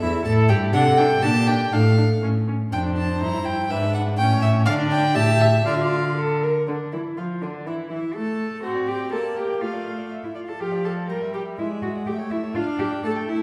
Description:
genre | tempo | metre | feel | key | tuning
quick classical-period movement for string quartet | 122 BPM | 2/4 | straight | D minor | A4 = 441 Hz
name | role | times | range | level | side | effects
warm violin | melody | 0.0-13.4 s | D5 to Bb5 | -29 LUFS | equal | none
warm violin | second line | 0.0-13.4 s | D4 to A5 | -31 LUFS | equal | none
rich viola | accompaniment | 0.0-13.4 s | D3 to Bb4 | -29 LUFS | equal | none
dark cello | bass | 0.0-13.4 s | E2 to Bb4 | -25 LUFS | equal | none
room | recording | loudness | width
wet recital hall reverb, RT60 1.4 s | heard from further back in the room | -22 LUFS | mono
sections
0.0-6.7 A section; 6.7-13.4 A section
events
none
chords
0.0 A5/E; 0.7 D7/C; 1.2 Gm/Bb; 1.7 Dm/A; 2.2 A; 2.7 Dm/F; 3.2 Edim/G; 3.7 E7/G#; 4.2 A7; 4.7 N.C.; 5.2 A5; 5.7 Dm; 7.7 A5/E; 8.6 D7/C; 9.1 Gm/Bb; 9.6 Dm/A; 10.1 A5; 10.6 Dm/F; 11.1 Edim/G; 11.6 E7/G#; 12.1 A7; 12.6 Dm

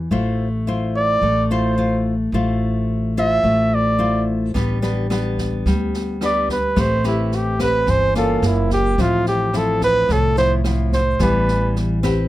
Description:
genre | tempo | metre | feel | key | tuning
bossa nova | 108 BPM | 4/4 | straight | unclear | A4 = 441 Hz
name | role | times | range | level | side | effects
nylon-string guitar | accompaniment | 0.0-12.3 s | A2 to C5 | -21 LUFS | left 2 dB | none
upright bass | bass | 0.0-12.3 s | F#1 to D2 | -22 LUFS | right 1 dB | none
warm flugelhorn | melody | 1.0-11.8 s | E4 to E5 | -19 LUFS | right 1 dB | none
open jazz drum kit | drums | 4.6-12.2 s | kick drum, rim click, snare drum | -27 LUFS | right 1 dB | none
room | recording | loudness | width
light reverb | close, detailed microphones | -16 LUFS | side -15 dB against mid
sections
0.0-12.3 A section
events
flugelhorn solo 0.0-12.3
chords
0.1 Dm9/A; 4.5 G/A; 6.8 Am9; 8.4 F#maj7; 9.0 Fmaj7/A; 11.2 Em/A

